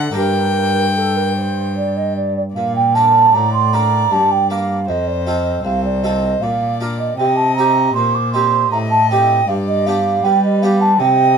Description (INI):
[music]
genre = classical, baroque-style sonata movement with continuo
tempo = 78 BPM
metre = 3/4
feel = straight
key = Bb major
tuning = A4 = 441 Hz
[part]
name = warm violin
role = melody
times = 0.0-11.4 s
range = B4 to G5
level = -25 LUFS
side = left 6 dB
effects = none
[part]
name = mellow hollow baroque flute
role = second line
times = 0.0-11.4 s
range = A4 to D6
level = -15 LUFS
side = right 4 dB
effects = none
[part]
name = harpsichord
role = accompaniment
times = 0.0-11.4 s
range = C2 to C5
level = -24 LUFS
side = left 2 dB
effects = none
[part]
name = dark cello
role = bass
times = 0.0-11.4 s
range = C2 to G3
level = -20 LUFS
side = equal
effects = none
[sound]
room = light reverb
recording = minimal, uncompressed stereo recording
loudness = -13 LUFS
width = side -6 dB against mid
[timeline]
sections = 0.0-2.6 A section; 2.6-11.4 A section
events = none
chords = 0.2 Gm; 2.6 Bb; 4.9 F; 6.4 Bb; 7.2 Cm; 9.5 G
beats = | 0.16 0.97 1.77 | 2.57 3.35 4.12 | 4.88 5.65 6.42 | 7.18 7.95 8.71 | 9.47 10.24 11.00